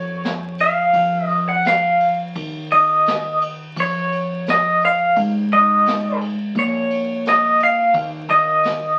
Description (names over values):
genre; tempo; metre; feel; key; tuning
acoustic folk-pop ballad; 86 BPM; 4/4; straight; Bb minor; A4 = 439 Hz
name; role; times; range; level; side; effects
electric guitar through a small old amp; melody; 0.0-9.0 s; Db5 to Gb5; -18 LUFS; equal; tremolo
mellow tine electric piano; accompaniment; 0.0-9.0 s; Eb3 to Bb3; -28 LUFS; equal; none
upright bass; bass; 0.0-9.0 s; Bb1 to Ab2; -37 LUFS; equal; none
vintage brush drum kit; drums; 0.2-8.8 s; kick drum, ride cymbal, snare drum; -33 LUFS; equal; none
room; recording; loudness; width
wet studio reverb, RT60 0.6 s; very old 78 rpm record, vinyl crackle; -18 LUFS; mono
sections
0.0-9.0 A section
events
none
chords
0.0 Db/F; 0.9 N.C.; 3.8 Db/F; 5.2 Ab5; 6.6 Bbm; 7.9 N.C.